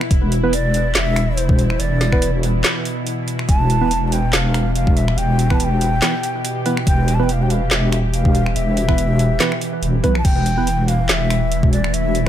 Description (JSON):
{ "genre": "deep dubstep", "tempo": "142 BPM", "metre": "4/4", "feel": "swing 55% on 16ths, half-time", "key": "E phrygian", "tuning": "A4 = 440 Hz", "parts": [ { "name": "bowed-like drone", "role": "sustained chords", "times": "0.0-12.3 s", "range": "B2 to G4", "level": "-24 LUFS", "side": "equal", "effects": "built-in reverb" }, { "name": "percussive organ stab", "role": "stabs", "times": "0.0-12.3 s", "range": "E3 to B4", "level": "-24 LUFS", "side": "right 3 dB", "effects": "chorus, vintage 12-bit sampler grit, dub echo" }, { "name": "garage drum kit", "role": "drums", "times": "0.0-12.3 s", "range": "crash cymbal, finger snaps, handclaps, hi-hat, snare drum", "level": "-22 LUFS", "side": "equal", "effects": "overdrive" }, { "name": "deep soft wobble bass", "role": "bass", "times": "0.1-12.3 s", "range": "E1 to B1", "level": "-18 LUFS", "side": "equal", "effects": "chorus" }, { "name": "electronic kick drum", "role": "drums", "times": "0.1-12.3 s", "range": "none", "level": "-16 LUFS", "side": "equal", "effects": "overdrive" }, { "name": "breathy low ney", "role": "melody", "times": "0.5-12.3 s", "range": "C5 to A5", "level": "-24 LUFS", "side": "left 1 dB", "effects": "dub echo" } ], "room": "digital ambience", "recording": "none", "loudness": "-15 LUFS", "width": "side -11 dB against mid", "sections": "0.0-12.3 A section", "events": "none", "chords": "0.0 E5", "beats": "| 0.11 0.53 0.95 1.38 | 1.80 2.22 2.64 3.06 | 3.49 3.91 4.33 4.75 | 5.18 5.60 6.02 6.45 | 6.87 7.29 7.71 8.13 | 8.56 8.98 9.40 9.82 | 10.25 10.67 11.09 11.52 | 11.94" }